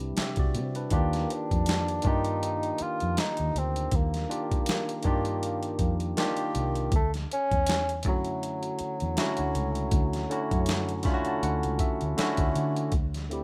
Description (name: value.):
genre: R&B, neo-soul.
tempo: 80 BPM.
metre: 4/4.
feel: swing 56% on 16ths.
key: unclear.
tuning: A4 = 440 Hz.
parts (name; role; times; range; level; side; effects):
barky tine electric piano; accompaniment; 0.0-13.4 s; C3 to B5; -33 LUFS; equal; none.
vintage muted fingered electric bass; bass; 0.0-13.4 s; C2 to D3; -33 LUFS; equal; none.
boom bap sampler-style drum kit; drums; 0.0-13.4 s; hi-hat, kick drum, snare drum; -31 LUFS; equal; none.
mellow bassoon; melody; 1.0-13.4 s; F#3 to F4; -35 LUFS; equal; none.
room: little or no reverb.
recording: rough home demo mix.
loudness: -28 LUFS.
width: mono.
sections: 0.0-12.9 A section.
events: tine electric piano fill 10.7-12.9.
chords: 0.0 Cmaj9; 0.9 Ebmaj9; 6.9 Dmaj9; 12.9 D9sus4.